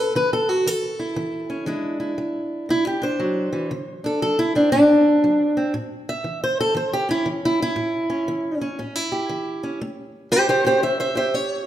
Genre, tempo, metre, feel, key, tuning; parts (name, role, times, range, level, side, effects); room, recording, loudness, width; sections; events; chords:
acoustic country blues, solo or duo; 118 BPM; 4/4; swing 64% on 8ths; A mixolydian; A4 = 441 Hz
fingerpicked steel-string acoustic guitar; solo; 0.0-11.7 s; A2 to E5; -19 LUFS; equal
wet recital hall reverb, RT60 1.8 s; recorded in a church or concert hall; -19 LUFS; side -12 dB against mid
0.0-9.8 A section; 9.8-11.7 A section
steel-string acoustic guitar solo 0.0-11.7
0.0 A5; 1.7 E7; 3.7 D7; 5.7 A7